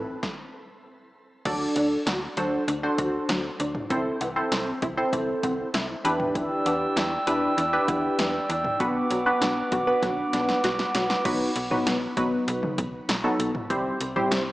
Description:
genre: synth-pop.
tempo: 98 BPM.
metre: 4/4.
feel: straight.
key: unclear.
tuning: A4 = 440 Hz.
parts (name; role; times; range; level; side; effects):
funky polysynth comp; accompaniment; 0.0-14.4 s; F#3 to D5; -26 LUFS; equal; chorus, phaser, shimmer reverb.
wide unison pluck; arpeggios; 0.0-11.1 s; E3 to F#4; -32 LUFS; equal; ensemble chorus, diffuse ambient delay, shimmer reverb.
slap-like FM bass; bass; 0.0-14.5 s; A1 to E2; -34 LUFS; equal; none.
punchy analog drum machine; drums; 0.2-14.5 s; cowbell, crash cymbal, hi-hat, kick drum, snare drum, toms; -30 LUFS; equal; overdrive.
glass harmonica; sustained chords; 6.3-11.2 s; B4 to E6; -27 LUFS; right 1 dB; shimmer reverb.
room: wet plate reverb, RT60 2.1 s.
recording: dreamy mix soaked in reverb, small speaker sound.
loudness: -23 LUFS.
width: side -17 dB against mid.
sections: 0.0-1.5 A section; 1.5-11.3 B section; 11.3-14.5 C section.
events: stop 0.2-1.5; drum fill 10.0-11.3.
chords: 0.0 Amadd9; 1.5 D; 3.9 Am/C; 6.0 Em7; 8.8 Bm; 11.3 B; 13.7 C.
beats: 0.23 0.84 | 1.46 2.07 2.68 3.29 | 3.90 4.52 5.13 5.74 | 6.35 6.96 7.58 8.19 | 8.80 9.41 10.03 10.64 | 11.25 11.86 12.48 13.09 | 13.70 14.31.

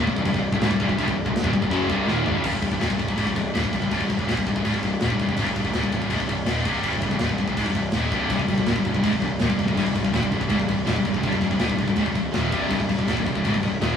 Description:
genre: heavy metal.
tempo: 164 BPM.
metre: 4/4.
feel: straight.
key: C minor.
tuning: A4 = 440 Hz.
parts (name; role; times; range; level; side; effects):
overdriven semi-hollow guitar; riff; 0.0-2.5, 8.3-14.0 s; C2 to F#3; -25 LUFS; left 1 dB; none.
scooped high-gain guitar; riff; 0.0-14.0 s; C2 to F#3; -25 LUFS; left 2 dB; distortion.
scooped high-gain guitar; riff; 0.0-14.0 s; C2 to F#3; -30 LUFS; right 4 dB; distortion.
fuzz picked electric bass; bass; 0.0-14.0 s; C1 to Ab1; -29 LUFS; equal; overdrive.
tight metal drum kit; drums; 0.1-13.9 s; crash cymbal, kick drum, snare drum, toms; -28 LUFS; left 1 dB; none.
room: moderate stone room reverb, RT60 1.3 s.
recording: rough rehearsal-room recording.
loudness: -20 LUFS.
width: side -8 dB against mid.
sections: 0.0-2.4 A section; 2.4-14.0 B section.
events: drum fill 2.1-2.4.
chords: 0.0 Cm.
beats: 0.24 0.61 | 0.98 1.34 1.71 2.08 | 2.44 2.81 3.18 3.54 | 3.91 4.28 4.65 5.01 | 5.38 5.75 6.11 6.48 | 6.85 7.21 7.58 7.95 | 8.31 8.68 9.05 9.41 | 9.78 10.15 10.51 10.88 | 11.25 11.62 11.98 12.35 | 12.72 13.08 13.45 13.82.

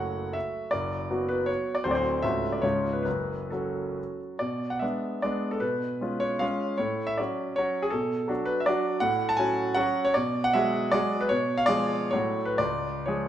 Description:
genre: classical, romantic triple-time dance for piano with dotted rhythms.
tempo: 120-175 BPM.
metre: 3/4.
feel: rubato.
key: F# minor.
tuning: A4 = 440 Hz.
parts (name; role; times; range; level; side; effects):
bright concert grand piano; solo; 0.0-13.3 s; C#1 to A5; -25 LUFS; equal; none.
room: moderate recital hall reverb, RT60 1.4 s.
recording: none.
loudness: -25 LUFS.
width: side -11 dB against mid.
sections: 0.0-4.4 A section; 4.4-13.3 B section.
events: none.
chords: 0.0 F#m; 0.7 Bm/F#; 1.9 D7; 2.2 F#m/C#; 2.6 C#; 3.1 F#m; 4.4 G#dim/B; 5.6 C#7/B; 6.8 F#m/A; 7.9 Bm; 9.0 F#m/A; 10.2 Bm6; 11.3 Bdim7; 12.1 F#m/A; 12.6 C#.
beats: 0.35 | 0.73 1.10 1.49 | 1.85 2.23 2.64 | 3.06 3.52 3.99 | 4.41 4.83 5.25 | 5.63 6.03 6.42 | 6.80 7.19 7.58 | 7.93 8.30 8.67 | 9.03 9.40 9.78 | 10.17 10.56 10.95 | 11.32 11.71 12.14 | 12.60 13.09.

